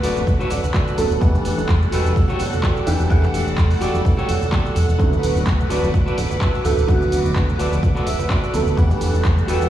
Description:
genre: filtered disco house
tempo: 127 BPM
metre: 4/4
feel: swing 54% on 16ths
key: D major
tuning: A4 = 438 Hz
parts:
  - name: clear baby grand piano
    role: accompaniment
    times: 0.0-9.7 s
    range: D3 to F#5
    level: -24 LUFS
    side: right 2 dB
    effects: phaser, sidechain pumping
  - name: string machine, full ensemble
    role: sustained chords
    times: 0.0-9.7 s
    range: A4 to D6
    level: -27 LUFS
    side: right 2 dB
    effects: ensemble chorus, sidechain pumping
  - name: twangy electric guitar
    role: riff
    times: 0.0-9.7 s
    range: F#4 to A5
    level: -26 LUFS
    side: left 1 dB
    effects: sidechain pumping
  - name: fat analog bass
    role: bass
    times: 0.0-9.7 s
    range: D1 to E2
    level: -21 LUFS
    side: equal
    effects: sidechain pumping
  - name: punchy analog drum machine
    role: drums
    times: 0.0-9.7 s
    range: cabasa, handclaps, hi-hat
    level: -30 LUFS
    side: equal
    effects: sidechain pumping on perc, sidechain pumping on hats, sidechain pumping on cymbals
  - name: tambourine and congas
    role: percussion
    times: 0.0-9.7 s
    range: none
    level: -32 LUFS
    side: right 4 dB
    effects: sidechain pumping on perc
  - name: electronic kick drum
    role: drums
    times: 0.3-9.3 s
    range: none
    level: -19 LUFS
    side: equal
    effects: none
room: little or no reverb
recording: played on a big sound system in a bare room, stone room reverb, small room reverb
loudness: -16 LUFS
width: side -12 dB against mid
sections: 0.0-9.7 A section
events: clean electric guitar fill 0.3-1.2, 7.8-8.8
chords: 0.0 D6; 1.2 Em11; 5.0 D6; 8.8 Em11

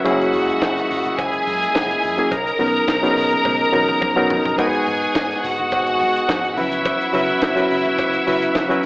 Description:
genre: disco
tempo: 106 BPM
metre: 4/4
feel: straight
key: B major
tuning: A4 = 440 Hz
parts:
  - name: reed electric piano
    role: accompaniment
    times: 0.0-8.9 s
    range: F#3 to B4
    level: -21 LUFS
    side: equal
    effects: overdrive
  - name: overdriven tonewheel organ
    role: sustained chords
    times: 0.0-8.9 s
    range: A#2 to A#4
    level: -24 LUFS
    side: equal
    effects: slow rotary speaker
  - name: bright studio string section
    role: second line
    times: 0.1-8.9 s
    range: E4 to A#5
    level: -20 LUFS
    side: equal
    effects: none
  - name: picked electric bass with an envelope filter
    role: bass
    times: 0.1-8.7 s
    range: F#1 to C#3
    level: -33 LUFS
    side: equal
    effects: none
  - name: tight funk drum kit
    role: drums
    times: 0.1-8.9 s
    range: hi-hat, kick drum, snare drum, toms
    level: -26 LUFS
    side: equal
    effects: gated reverb
  - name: congas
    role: percussion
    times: 0.1-8.7 s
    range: none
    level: -39 LUFS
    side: equal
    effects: none
  - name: cowbell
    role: percussion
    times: 0.1-8.7 s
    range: none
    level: -31 LUFS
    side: equal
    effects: none
room: moderate echo chamber reverb, RT60 1.5 s, studio reverb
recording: AM radio sound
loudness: -16 LUFS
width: side -27 dB against mid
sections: 0.0-8.9 A section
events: drum fill 3.5-4.6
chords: 0.1 F#9; 2.3 Bmaj9; 4.6 G#m7; 6.6 C#m7

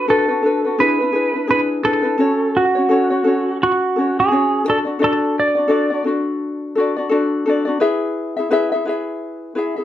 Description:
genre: pop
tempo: 85 BPM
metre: 4/4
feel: swing 60% on 16ths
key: unclear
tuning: A4 = 440 Hz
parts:
  - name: clean lap steel guitar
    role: melody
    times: 0.0-6.0 s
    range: F#4 to D5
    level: -17 LUFS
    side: right 2 dB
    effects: slapback echo
  - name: ukulele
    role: accompaniment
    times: 0.0-9.8 s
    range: C#4 to E5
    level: -18 LUFS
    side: left 2 dB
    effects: none
room: moderate studio reverb, RT60 0.6 s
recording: none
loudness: -15 LUFS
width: side -12 dB against mid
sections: 0.0-2.2 A section; 2.2-9.8 B section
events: none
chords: 0.0 Bm7; 0.8 E7; 2.2 F#m; 4.7 D; 7.8 E

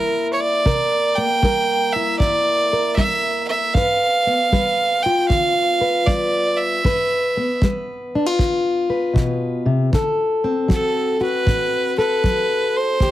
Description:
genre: acoustic country blues, solo or duo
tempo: 78 BPM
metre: 4/4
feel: swing 66% on 8ths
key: G mixolydian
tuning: A4 = 440 Hz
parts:
  - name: clear fiddle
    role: melody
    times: 0.0-13.1 s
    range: A4 to G5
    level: -19 LUFS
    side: right 2 dB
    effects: none
  - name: fingerpicked plugged-in steel-string acoustic guitar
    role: accompaniment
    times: 0.0-13.1 s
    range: G2 to B4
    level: -20 LUFS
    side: left 2 dB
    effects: none
  - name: kick drum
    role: drums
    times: 0.7-13.1 s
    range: none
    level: -20 LUFS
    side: equal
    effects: none
room: light reverb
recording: heavily compressed radio sound, multiband compression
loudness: -16 LUFS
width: side -14 dB against mid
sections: 0.0-13.1 A section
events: none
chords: 0.0 C7; 3.8 G7; 9.9 D7

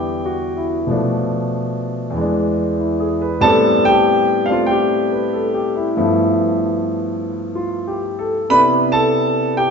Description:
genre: solo jazz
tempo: 94 BPM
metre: 4/4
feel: swing 69% on 8ths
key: E minor, A minor from 3.4 s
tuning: A4 = 441 Hz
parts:
  - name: clear concert grand piano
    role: solo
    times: 0.0-9.7 s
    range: E2 to B5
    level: -15 LUFS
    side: equal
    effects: none
room: wet recital hall reverb, RT60 1.5 s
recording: recorded in a church or concert hall, nothing above 7.6 kHz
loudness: -15 LUFS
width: side -5 dB against mid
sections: 0.0-3.4 A section; 3.4-9.7 B section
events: none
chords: 0.0 Em7; 0.9 Bm7b5; 2.1 E7; 3.4 Am11; 6.0 G13; 8.5 Cmaj9

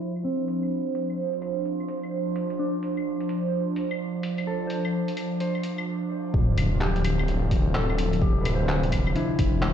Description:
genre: future garage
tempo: 128 BPM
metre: 4/4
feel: swing 63% on 16ths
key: D dorian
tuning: A4 = 444 Hz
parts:
  - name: mellow electric guitar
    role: accompaniment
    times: 0.0-9.7 s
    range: C4 to C5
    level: -32 LUFS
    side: left 3 dB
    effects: sidechain pumping, low-pass filter, analog delay
  - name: airy breathy pad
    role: sustained chords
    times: 0.0-9.7 s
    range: C3 to C5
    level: -28 LUFS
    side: right 2 dB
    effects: chorus, phaser, sidechain pumping
  - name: lo-fi sampler-style drum kit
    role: drums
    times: 0.0-9.7 s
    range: claves, handclaps, hi-hat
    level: -34 LUFS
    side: left 1 dB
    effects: vintage 12-bit sampler grit
  - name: swelling detuned saw bass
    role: bass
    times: 6.3-9.7 s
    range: D1 to F1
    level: -25 LUFS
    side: equal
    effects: sidechain pumping
  - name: electronic kick drum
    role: drums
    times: 6.3-9.5 s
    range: none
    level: -24 LUFS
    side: equal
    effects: vintage 12-bit sampler grit
  - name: sub drop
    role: sound effects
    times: 6.3-8.2 s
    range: none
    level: -31 LUFS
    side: equal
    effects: none
room: light reverb, digital ambience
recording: played on a big sound system in a bare room, cassette tape, large studio reverb, low-pass filter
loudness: -24 LUFS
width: side -9 dB against mid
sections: 0.0-6.3 A section; 6.3-9.7 B section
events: filter sweep on analog synth pad 0.0-6.3; filter sweep on clean electric guitar 0.0-6.3; filter sweep 0.0-6.3; break 5.9-6.3; impact 6.3-8.2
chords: 0.0 Dm7

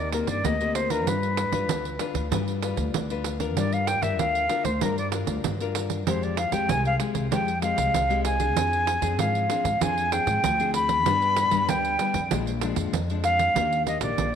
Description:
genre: samba and choro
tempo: 96 BPM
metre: 4/4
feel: straight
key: unclear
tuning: A4 = 440 Hz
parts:
  - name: silver concert flute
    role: melody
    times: 0.0-14.4 s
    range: Bb4 to B5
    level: -25 LUFS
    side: equal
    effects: none
  - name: nylon-string guitar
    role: accompaniment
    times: 0.0-14.4 s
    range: F2 to B4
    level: -30 LUFS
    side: left 10 dB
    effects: none
  - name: upright bass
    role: bass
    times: 0.0-14.4 s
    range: Bb1 to Ab2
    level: -30 LUFS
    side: equal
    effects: none
  - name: pandeiro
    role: percussion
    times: 0.1-14.3 s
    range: none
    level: -30 LUFS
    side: right 10 dB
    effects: none
room: moderate echo chamber reverb, RT60 2.3 s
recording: 1960s-style stereo with parts hard left and right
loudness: -22 LUFS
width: side -8 dB against mid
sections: 0.0-13.6 A section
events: flute solo 0.0-13.6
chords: 0.0 Cm7/Eb; 1.1 G7; 3.6 Gm7; 6.1 Fmadd9; 8.6 Dm7b5/F; 11.1 G; 12.3 Bb7; 13.6 Ebmaj7

